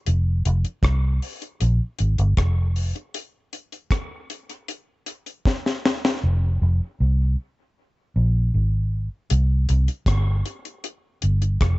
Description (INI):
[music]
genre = dub reggae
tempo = 78 BPM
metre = 4/4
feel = straight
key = F minor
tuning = A4 = 440 Hz
[part]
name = vintage muted fingered electric bass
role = bass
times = 0.1-11.8 s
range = F1 to C2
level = -19 LUFS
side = equal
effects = none
[part]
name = deep reggae drum kit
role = drums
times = 0.1-11.8 s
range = hi-hat, kick drum, rim click, snare drum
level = -24 LUFS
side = left 1 dB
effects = none
[sound]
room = little or no reverb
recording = nothing above 7.9 kHz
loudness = -20 LUFS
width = side -21 dB against mid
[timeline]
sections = 0.0-11.8 A section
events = break 3.1-6.2; drum fill 5.5-6.2; part muted 6.2-9.3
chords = none